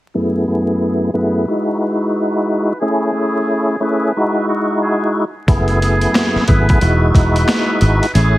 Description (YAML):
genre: hip hop, boom-bap hip-hop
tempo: 90 BPM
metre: 4/4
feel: swing 62% on 16ths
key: E major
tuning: A4 = 440 Hz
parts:
  - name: tonewheel organ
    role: accompaniment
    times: 0.1-8.4 s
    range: F#2 to G#4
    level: -16 LUFS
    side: equal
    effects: chorus vibrato, slow rotary speaker, high-pass filter, low-pass filter
  - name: trumpet with metal mute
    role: melody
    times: 0.2-8.4 s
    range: F#4 to B4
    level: -24 LUFS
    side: right 1 dB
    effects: high-pass filter, low-pass filter, tape echo
  - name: fingered electric bass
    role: bass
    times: 5.5-8.4 s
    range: E1 to A1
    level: -14 LUFS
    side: equal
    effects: none
  - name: boom bap sampler-style drum kit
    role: drums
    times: 5.5-8.3 s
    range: hi-hat, kick drum, snare drum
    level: -15 LUFS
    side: equal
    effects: vintage 12-bit sampler grit
room: light reverb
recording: heavily compressed radio sound, vinyl crackle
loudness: -13 LUFS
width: side -16 dB against mid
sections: 0.1-8.4 A section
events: filter sweep 0.1-8.4; kick muted 8.1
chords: 0.1 F#m11; 1.5 Emaj9; 2.8 Amaj7; 4.1 Emaj9; 5.5 F#m11; 6.8 Emaj9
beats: | 0.15 0.81 1.48 2.15 | 2.81 3.48 4.15 4.81 | 5.48 6.15 6.81 7.48 | 8.15